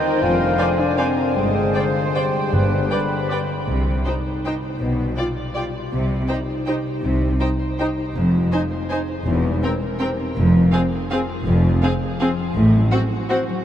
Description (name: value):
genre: classical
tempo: 146-175 BPM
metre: 3/4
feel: rubato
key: C minor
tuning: A4 = 439 Hz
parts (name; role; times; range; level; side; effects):
- rich chamber violin section; melody; 0.0-13.4 s; Ab4 to Ab5; -33 LUFS; left 2 dB; none
- bright small flute group; second line; 0.0-3.7 s; F5 to B5; -31 LUFS; right 2 dB; none
- mellow oboe; second line; 0.0-3.5 s; B4 to C5; -29 LUFS; right 1 dB; none
- warm clarinet; second line; 0.0-3.5 s; G4 to F5; -29 LUFS; left 4 dB; none
- warm bassoon; accompaniment; 0.0-3.5 s; D3 to Eb3; -29 LUFS; left 3 dB; none
- mellow French horn section; sustained chords; 0.0-3.5 s; G3 to F4; -25 LUFS; equal; none
- concert harp; arpeggios; 0.0-13.6 s; E2 to D5; -26 LUFS; left 2 dB; none
- rich studio cello section; bass; 0.2-12.9 s; E2 to C3; -23 LUFS; equal; none
- rich symphonic double bass section; bass; 0.2-12.9 s; E1 to C2; -24 LUFS; equal; none
- rich chamber violin section; second line; 0.6-13.4 s; F#4 to Ab5; -30 LUFS; left 1 dB; none
- warm symphonic viola section; accompaniment; 0.6-13.4 s; C4 to D5; -27 LUFS; equal; none
- timpani; percussion; 2.5-3.1 s; G2; -25 LUFS; right 1 dB; none
room: wet huge ambient reverb, RT60 7.2 s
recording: in a vast, echoing space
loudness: -18 LUFS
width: side -10 dB against mid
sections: 0.0-3.7 A section; 3.7-13.6 B section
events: none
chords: 0.2 Dm7b5/F; 1.4 Gsus4; 2.5 G; 3.7 Cm; 4.8 G7/B; 5.9 Cm; 8.2 Fm7; 9.3 C7/E; 10.4 Fm; 12.6 F#dim/A